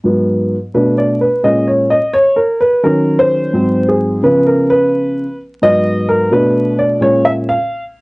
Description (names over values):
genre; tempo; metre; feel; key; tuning
hip hop; 86 BPM; 4/4; swing 61% on 16ths; G# dorian; A4 = 435 Hz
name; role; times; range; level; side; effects
dark upright piano; solo; 0.0-7.8 s; G#2 to E#5; -11 LUFS; equal; none
room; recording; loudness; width
light reverb; home recording on cassette, vinyl crackle, nothing above 10.4 kHz, faint mains hum; -11 LUFS; side -25 dB against mid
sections
0.0-8.0 A section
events
upright piano solo 0.0-8.0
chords
0.0 G#m7; 0.7 Bm7; 1.4 A#m7; 2.8 D#m7; 3.5 G#7; 4.2 C#7; 5.6 G#m7; 6.3 Bm7; 7.0 A#m7